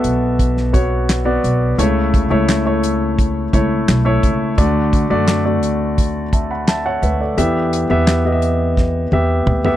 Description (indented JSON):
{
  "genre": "piano-driven pop",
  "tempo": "86 BPM",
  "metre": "4/4",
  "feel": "straight",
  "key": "D major",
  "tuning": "A4 = 440 Hz",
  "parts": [
    { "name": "warm concert grand piano", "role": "accompaniment", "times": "0.0-9.8 s", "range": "B2 to B5", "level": "-17 LUFS", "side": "left 1 dB", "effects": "none" },
    { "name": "upright bass", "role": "bass", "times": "0.0-9.8 s", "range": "B1 to F#2", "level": "-19 LUFS", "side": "equal", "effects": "none" },
    { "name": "damped 70s drum kit", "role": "drums", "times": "0.0-9.8 s", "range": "handclaps, hi-hat, kick drum, snare drum, toms", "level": "-17 LUFS", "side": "equal", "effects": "none" }
  ],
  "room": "little or no reverb",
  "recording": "dry, close 1970s-style studio recording",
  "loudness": "-14 LUFS",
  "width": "side -13 dB against mid",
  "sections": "0.0-9.8 A section",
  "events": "drum fill 8.8-9.8",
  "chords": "0.0 Bm; 1.8 A/C#; 4.6 D; 7.4 Em",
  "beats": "0.39 1.09 | 1.79 2.49 3.19 3.88 | 4.58 5.28 5.98 6.68 | 7.38 8.07 8.77 9.47"
}